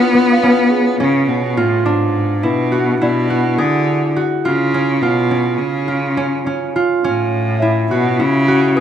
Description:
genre	contemporary instrumental, chamber music in an uneven meter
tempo	209 BPM (eighths)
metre	9/8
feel	straight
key	unclear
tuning	A4 = 441 Hz
part	bright cello	melody	0.0-8.8 s	G#2 to B3	-16 LUFS	left 1 dB	none
part	concert harp	arpeggios	0.0-8.8 s	B3 to G#4	-17 LUFS	right 1 dB	none
part	worn celesta	texture	0.1-8.8 s	G#4 to E#5	-25 LUFS	right 1 dB	none
room	moderate recital hall reverb, RT60 1.7 s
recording	minimal, uncompressed stereo recording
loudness	-13 LUFS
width	side -9 dB against mid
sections	0.0-1.9 A section; 1.9-8.8 B section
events	none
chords	0.0 C#7; 1.9 E7; 4.5 C#7; 7.0 F#m7

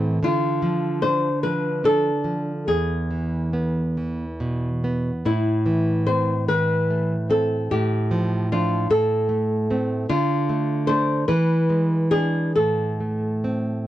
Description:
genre	romantic duo for nylon-string guitar and classical guitar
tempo	45-52 BPM (dotted quarters)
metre	6/8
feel	rubato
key	A minor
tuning	A4 = 435 Hz
part	flamenco guitar	melody	0.0-13.8 s	E4 to C5	-23 LUFS	left 1 dB	none
part	nylon-string guitar	accompaniment	0.0-13.9 s	E2 to D4	-22 LUFS	right 1 dB	none
room	light reverb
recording	worn, warbling old tape, cassette tape, warbly pitch drift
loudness	-20 LUFS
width	side -13 dB against mid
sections	0.0-13.9 A section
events	none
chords	0.2 Dm; 2.7 E; 5.3 Am; 7.7 Dm/A; 8.9 Am; 10.1 Dm; 11.3 E7; 12.6 Am

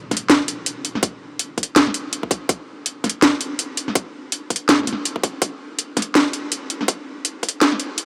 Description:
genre	drum and bass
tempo	164 BPM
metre	4/4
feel	swing 58% on 16ths, half-time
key	none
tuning	none
part	drum and bass drum kit	drums	0.1-8.1 s	hi-hat, snare drum	-21 LUFS	equal	none
part	electronic kick drum	drums	0.1-7.5 s	none	-24 LUFS	equal	high-pass filter on kick, high-pass filter on room
room	moderate huge ambient reverb, RT60 7.0 s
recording	high-pass filter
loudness	-21 LUFS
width	mono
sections	0.0-8.1 A section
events	build-up 0.0-8.1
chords	none

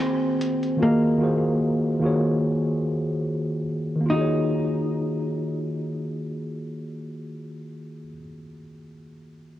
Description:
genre	lo-fi hip hop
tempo	73 BPM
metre	4/4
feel	swing 62% on 16ths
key	Eb dorian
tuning	A4 = 440 Hz
part	hollow-body jazz guitar	melody	0.0-8.2 s	Bb3 to Eb4	-25 LUFS	equal	low-pass filter
part	mellow tine electric piano	accompaniment	0.0-9.6 s	Eb3 to F5	-25 LUFS	equal	medium stereo tremolo, cassette tape, low-pass filter
part	electronic hi-hat	drums	0.4-0.8 s	none	-29 LUFS	equal	none
room	light reverb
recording	home recording on cassette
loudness	-22 LUFS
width	side -13 dB against mid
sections	0.0-4.1 A section; 4.1-7.4 B section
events	none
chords	0.0 Ebm11

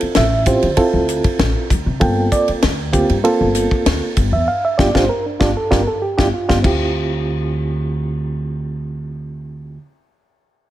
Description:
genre	electric jazz fusion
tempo	97 BPM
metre	4/4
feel	straight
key	D minor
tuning	A4 = 442 Hz
part	reed electric piano	accompaniment	0.0-9.8 s	Bb3 to G5	-18 LUFS	right 2 dB	medium tremolo
part	upright bass	bass	0.0-9.8 s	G1 to D3	-20 LUFS	equal	none
part	tight funk drum kit	drums	0.0-6.8 s	crash cymbal, hi-hat, kick drum, ride cymbal, snare drum	-20 LUFS	left 1 dB	none
room	light reverb, studio reverb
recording	none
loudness	-15 LUFS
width	side -13 dB against mid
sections	0.0-6.9 A section; 6.9-9.4 B section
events	band accent 4.5-6.9; drum fill 5.7-6.9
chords	0.0 Dm9; 2.0 Gm11; 6.6 Dm11

